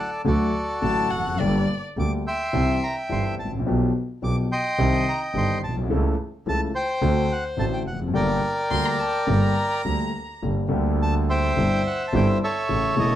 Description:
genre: tango.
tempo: 106 BPM.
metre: 4/4.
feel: rubato.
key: G harmonic minor.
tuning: A4 = 440 Hz.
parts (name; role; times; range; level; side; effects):
bandoneon; melody; 0.0-13.2 s; F#4 to D6; -25 LUFS; equal; plate reverb.
warm concert grand piano; accompaniment; 0.2-13.2 s; E1 to A4; -25 LUFS; left 2 dB; none.
bright double bass; bass; 0.3-13.2 s; E1 to D2; -25 LUFS; right 2 dB; none.
rich violin; second line; 0.8-1.8, 8.7-10.4 s; D5 to C6; -28 LUFS; left 4 dB; none.
room: moderate studio reverb, RT60 0.8 s.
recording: none.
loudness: -21 LUFS.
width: side -12 dB against mid.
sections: 0.0-10.4 A section; 10.4-13.2 A section.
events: none.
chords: 0.0 D; 1.4 Gm; 2.5 Cadd9; 3.7 G7/B; 4.8 Cmadd9; 5.9 A/C#; 7.0 D7; 8.1 Gm; 11.6 Cadd9/G.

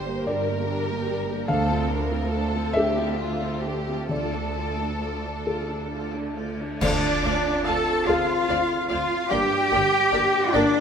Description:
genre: cinematic, emotional film score for orchestra.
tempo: 43-50 BPM (dotted quarters).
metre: 6/8.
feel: rubato.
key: D minor.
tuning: A4 = 440 Hz.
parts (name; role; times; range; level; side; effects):
warm symphonic violin section; melody; 0.0-10.8 s; G4 to A5; -33 LUFS; left 4 dB; none.
warm symphonic violin section; second line; 0.0-10.6 s; F4 to G5; -31 LUFS; left 2 dB; none.
felt-muted upright piano; accompaniment; 0.0-10.8 s; D2 to G5; -29 LUFS; left 2 dB; none.
warm symphonic viola section; accompaniment; 0.0-10.6 s; G3 to C5; -32 LUFS; right 2 dB; none.
rich symphonic double bass section; bass; 0.0-10.6 s; G1 to D2; -32 LUFS; right 3 dB; none.
warm symphonic cello section; bass; 0.0-10.8 s; D2 to A4; -27 LUFS; right 2 dB; none.
cymbal swell, clash cymbals and concert bass drum; percussion; 4.1-8.4 s; none; -32 LUFS; equal; none.
mellow cor anglais; second line; 6.8-10.8 s; D4 to A4; -29 LUFS; right 2 dB; none.
mellow flute section; second line; 6.8-10.8 s; D5 to A5; -28 LUFS; left 1 dB; none.
mellow French horn section; sustained chords; 6.8-10.8 s; Bb3 to F4; -30 LUFS; left 2 dB; none.
room: moderate scoring stage reverb, RT60 1.6 s.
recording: minimal, uncompressed stereo recording.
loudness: -22 LUFS.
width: side -7 dB against mid.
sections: 0.0-6.8 A section; 6.8-10.8 B section.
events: band accent 6.8-7.7.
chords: 0.0 Gm; 1.5 Dm7; 4.1 Dm; 6.8 Dm7; 9.3 Gm.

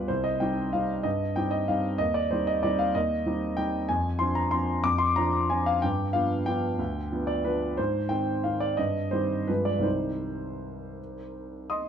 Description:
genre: classical, piano waltz.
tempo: 154-200 BPM.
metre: 3/4.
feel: rubato.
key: C minor.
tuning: A4 = 440 Hz.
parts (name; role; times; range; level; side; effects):
warm grand piano; solo; 0.0-11.9 s; C2 to Eb6; -25 LUFS; equal; none.
room: moderate stone room reverb, RT60 1.2 s.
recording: dark, warm production.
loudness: -24 LUFS.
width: side -8 dB against mid.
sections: 0.0-11.9 A section.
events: none.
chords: 0.1 Cm; 2.0 Cm/Eb; 3.9 Dm7b5/F; 5.8 G7; 7.8 Ab; 8.8 Cm/G; 9.5 G7b9; 9.8 Cm.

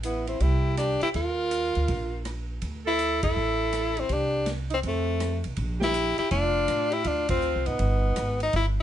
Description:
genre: jazz, small-group swing and bop.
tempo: 162 BPM.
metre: 4/4.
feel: swing 65% on 8ths.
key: unclear.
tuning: A4 = 441 Hz.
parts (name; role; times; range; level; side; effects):
breathy alto saxophone; second line; 0.0-8.4 s; C4 to Bb4; -31 LUFS; right 5 dB; none.
upright bass; bass; 0.0-8.8 s; F1 to A2; -28 LUFS; equal; none.
vintage drum kit; drums; 0.0-8.6 s; hi-hat, kick drum, ride cymbal, rim click, snare drum; -36 LUFS; right 1 dB; none.
bright tenor saxophone; melody; 0.1-8.7 s; A3 to F4; -27 LUFS; left 2 dB; none.
room: light reverb.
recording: nothing above 10.6 kHz.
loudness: -24 LUFS.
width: side -11 dB against mid.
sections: 0.0-8.5 A section.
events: band accent 3.2, 7.2.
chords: 0.0 Am7; 1.1 Ebsus2; 2.6 D5; 4.1 Csus2; 4.8 F; 5.6 Bb6; 7.1 Dm7; 7.8 Gaug.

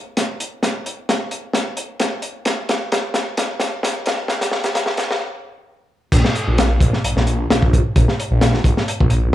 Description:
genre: breakbeat, breaks.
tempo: 131 BPM.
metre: 4/4.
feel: swing 53% on 16ths.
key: unclear.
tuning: A4 = 440 Hz.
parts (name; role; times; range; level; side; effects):
crunchy breakbeat drum kit; drums; 0.2-9.2 s; crash cymbal, hi-hat, kick drum, snare drum; -18 LUFS; equal; none.
phased detuned saw bass; bass; 6.1-9.3 s; Bb1; -17 LUFS; equal; phaser.
room: light reverb.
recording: dry, gritty hardware recording, high-pass filter, small room ambience.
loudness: -17 LUFS.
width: side -13 dB against mid.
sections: 0.0-6.1 A section; 6.1-9.3 B section.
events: build-up 0.0-6.1; drum fill 0.0-5.2; stop 5.2-6.1; drop 6.1-9.3.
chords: none.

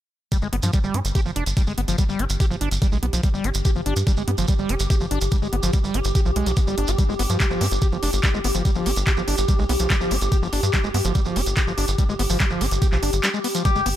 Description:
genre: psychedelic trance.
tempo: 144 BPM.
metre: 4/4.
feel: straight.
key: unclear.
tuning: A4 = 439 Hz.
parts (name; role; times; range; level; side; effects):
swarming drone; sustained chords; 1.8-14.0 s; G4; -29 LUFS; equal; built-in reverb, sidechain pumping.
screaming distorted acid line; riff; 0.3-13.9 s; F3 to G4; -27 LUFS; moving between left 7 dB and right 5 dB; distortion, chorus, auto-pan, sidechain pumping, ping-pong delay.
drum and bass drum kit; drums; 0.3-13.9 s; handclaps, hi-hat; -27 LUFS; equal; overdrive.
electronic kick drum; drums; 0.3-13.7 s; none; -21 LUFS; equal; overdrive.
shekere; percussion; 0.3-13.8 s; none; -32 LUFS; right 4 dB; none.
tight sequencer bass; bass; 0.4-13.9 s; F1 to G2; -24 LUFS; equal; none.
overdriven synth lead; melody; 13.7-13.8 s; G4; -22 LUFS; left 5 dB; phaser, vintage 12-bit sampler grit, sidechain pumping.
room: digital ambience.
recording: none.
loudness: -19 LUFS.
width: side -12 dB against mid.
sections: 0.3-14.0 A section.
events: kick drops out 13.2-13.7.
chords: 0.3 G5.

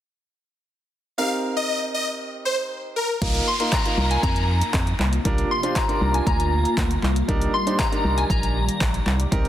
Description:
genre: dance-pop.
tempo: 118 BPM.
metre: 4/4.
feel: straight.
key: C minor.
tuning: A4 = 440 Hz.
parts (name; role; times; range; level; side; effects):
supersaw chords; melody; 1.2-3.1 s; Bb4 to F5; -24 LUFS; left 1 dB; phaser, sidechain pumping, digital delay.
clear concert grand piano; accompaniment; 1.2-9.5 s; Bb3 to C5; -28 LUFS; right 2 dB; sidechain pumping.
granular cloud pad; sustained chords; 4.5-9.5 s; C3 to D5; -30 LUFS; equal; built-in reverb, sidechain pumping.
organ-like FM bass; bass; 3.2-9.5 s; Bb1 to F2; -23 LUFS; equal; sidechain pumping.
punchy analog drum machine; drums; 3.2-9.5 s; crash cymbal, handclaps, hi-hat, kick drum; -24 LUFS; equal; none.
downlifter; sound effects; 3.2-7.3 s; none; -30 LUFS; right 1 dB; none.
shimmering bell with halo; melody; 3.5-8.8 s; Ab5 to C6; -26 LUFS; left 2 dB; ensemble chorus, phaser, digital delay.
room: light reverb, digital ambience.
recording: dense, heavily limited modern master.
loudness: -20 LUFS.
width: side -12 dB against mid.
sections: 1.2-3.2 A section; 3.2-9.5 B section.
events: none.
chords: 1.2 Cm7; 3.0 N.C.; 3.2 Bbsus4/C; 5.3 Gm7/C; 7.3 Ebmaj7/C.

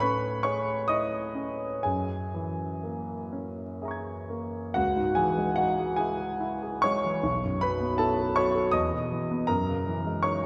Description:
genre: classical, impressionist solo piano.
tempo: 59-82 BPM.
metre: 3/4.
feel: rubato.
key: C# minor.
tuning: A4 = 440 Hz.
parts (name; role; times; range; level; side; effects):
warm grand piano; solo; 0.0-10.5 s; B1 to G#6; -28 LUFS; equal; none.
room: wet concert hall reverb, RT60 2.0 s.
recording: none.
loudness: -29 LUFS.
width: mono.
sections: 0.0-4.8 A section; 4.8-10.5 B section.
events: none.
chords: 0.0 Amaj7#11; 1.8 F#9; 4.8 C#madd9; 7.2 B9sus4; 8.7 E5; 9.5 F#13.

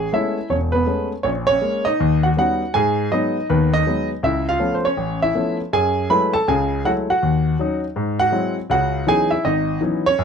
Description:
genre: solo jazz.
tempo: 161 BPM.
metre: 4/4.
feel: swing 63% on 8ths.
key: unclear.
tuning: A4 = 440 Hz.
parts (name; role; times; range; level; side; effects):
warm grand piano; solo; 0.0-10.2 s; E1 to B5; -17 LUFS; equal; none.
room: moderate studio reverb, RT60 0.5 s.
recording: dark, warm production.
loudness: -17 LUFS.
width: side -6 dB against mid.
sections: 0.0-10.2 A section.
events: none.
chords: 0.0 Amaj9; 1.2 A#madd11; 2.0 D#7alt; 2.7 G#m7; 4.2 C#7alt; 5.7 F#m9; 7.2 D#m7; 8.0 G#aug7; 8.7 C#m11.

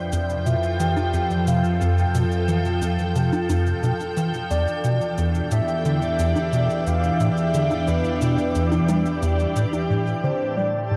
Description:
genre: ambient, sequencer-driven space music.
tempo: 89 BPM.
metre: 4/4.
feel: straight.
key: unclear.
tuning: A4 = 442 Hz.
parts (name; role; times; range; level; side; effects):
soft octave-layered synth lead; melody; 0.0-11.0 s; B4 to G5; -30 LUFS; equal; chorus, delay.
evolving wavetable pad; sustained chords; 0.0-11.0 s; A2 to G5; -28 LUFS; equal; ensemble chorus, built-in reverb, phaser.
analog drone; bass; 0.0-11.0 s; E2 to F2; -28 LUFS; equal; chorus, tube saturation.
twinkling granular texture; texture; 0.0-11.0 s; G5 to A5; -40 LUFS; equal; built-in reverb.
tight sequencer bass; riff; 0.1-11.0 s; E2 to G3; -26 LUFS; equal; delay.
cabasa and bongos; percussion; 0.1-9.9 s; none; -36 LUFS; equal; delay.
room: wet shimmer reverb, RT60 8.2 s.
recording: worn, warbling old tape, cassette tape, warbly pitch drift.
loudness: -22 LUFS.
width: mono.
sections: 0.0-9.9 A section; 9.9-11.0 B section.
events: filter sweep on analog synth bass 9.9-11.0.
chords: 0.0 Fmaj7; 4.5 Em7; 9.9 Am7.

